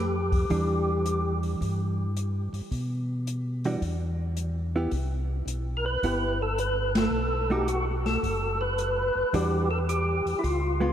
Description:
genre	soul jazz organ trio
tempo	109 BPM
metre	4/4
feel	swing 68% on 8ths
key	E minor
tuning	A4 = 444 Hz
part	percussive tonewheel organ	melody	0.0-1.4, 5.8-10.9 s	E4 to B4	-28 LUFS	equal	slow rotary speaker, overdrive, chorus vibrato
part	mellow tonewheel organ	bass	0.0-10.9 s	F#1 to B2	-29 LUFS	equal	slow rotary speaker
part	open jazz drum kit	drums	0.3-10.6 s	hi-hat, kick drum, ride cymbal, snare drum	-31 LUFS	equal	none
part	hollow-body jazz guitar	accompaniment	0.5-10.9 s	E3 to G4	-33 LUFS	right 2 dB	none
room	wet cathedral reverb, RT60 5.7 s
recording	in a vast, echoing space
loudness	-25 LUFS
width	side -10 dB against mid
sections	0.0-10.9 A section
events	band accent 6.8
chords	0.0 Em7; 4.9 Cmaj7; 7.1 B7(no3); 9.3 Em9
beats	| 0.49 1.05 1.60 2.15 | 2.70 3.25 3.81 4.36 | 4.91 5.46 6.02 6.57 | 7.12 7.67 8.23 8.78 | 9.33 9.89 10.44

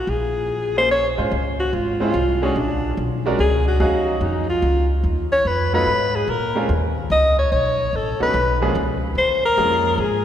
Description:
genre	jazz, small-group swing and bop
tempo	145 BPM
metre	3/4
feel	swing 67% on 8ths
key	Db major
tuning	A4 = 441 Hz
part	mellow alto saxophone	melody	0.0-10.2 s	Db4 to Eb5	-20 LUFS	left 1 dB	none
part	upright bass	bass	0.0-10.2 s	Ab1 to Bb2	-22 LUFS	equal	none
part	clear grand piano	accompaniment	0.8-10.0 s	F3 to F5	-25 LUFS	right 1 dB	none
room	wet church reverb, RT60 3.5 s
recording	recorded in a church or concert hall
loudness	-17 LUFS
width	side -10 dB against mid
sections	0.0-1.3 A section; 1.3-10.2 B section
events	none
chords	0.0 Bbm9; 1.3 Dbmaj7; 2.6 Bb7#9; 3.8 Ebm11; 5.0 Cb(#11); 6.3 Bbm; 7.5 Cb7sus2; 8.7 Db6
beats	| 0.07 0.49 0.90 | 1.31 1.73 2.14 | 2.56 2.97 3.38 | 3.80 4.21 4.62 | 5.04 5.45 5.86 | 6.27 6.69 7.10 | 7.51 7.92 8.34 | 8.75 9.16 9.57 | 9.98

